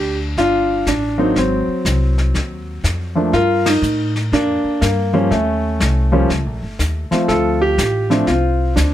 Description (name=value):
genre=jazz piano trio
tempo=122 BPM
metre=4/4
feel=swing 66% on 8ths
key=unclear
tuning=A4 = 438 Hz
part: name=warm concert grand piano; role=melody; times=0.0-8.9 s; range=F3 to Bb4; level=-17 LUFS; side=equal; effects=none
part: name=upright bass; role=bass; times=0.0-8.9 s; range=G1 to A2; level=-19 LUFS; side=equal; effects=none
part: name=vintage brush drum kit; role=drums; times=0.4-8.9 s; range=brushed snare drum, hi-hat, kick drum, ride cymbal, snare drum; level=-24 LUFS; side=left 2 dB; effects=none
room=little or no reverb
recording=none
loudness=-15 LUFS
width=side -12 dB against mid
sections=0.0-8.9 A section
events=band accent 3.6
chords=0.0 Bbmaj7 (rootless); 1.4 Ab7; 3.3 Gm9; 5.3 Eb7sus2; 7.3 Dm7